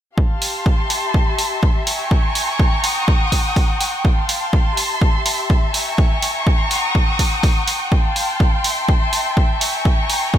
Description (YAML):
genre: piano house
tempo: 124 BPM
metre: 4/4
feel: swing 55% on 16ths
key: unclear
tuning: A4 = 441 Hz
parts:
  - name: dark studio violin section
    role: sustained chords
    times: 0.2-10.4 s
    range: G4 to Eb6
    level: -20 LUFS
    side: left 1 dB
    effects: sidechain pumping
  - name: electronic kick drum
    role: drums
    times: 0.2-10.4 s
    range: none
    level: -16 LUFS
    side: equal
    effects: studio reverb
  - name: electronic hi-hat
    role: drums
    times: 0.4-10.2 s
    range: none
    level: -23 LUFS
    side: right 2 dB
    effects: studio reverb
room: light reverb, studio ambience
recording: bright 1980s-style digital production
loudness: -15 LUFS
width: side -11 dB against mid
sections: 0.2-10.4 A section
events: none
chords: 0.2 G9sus4; 0.9 C6/G; 1.9 Edim7; 2.8 Eb7#9/F#; 4.0 G9sus4; 4.8 C6/G; 5.7 Edim7; 6.7 Eb7#9/F#; 7.9 G9sus4; 8.6 C6; 9.6 Edim7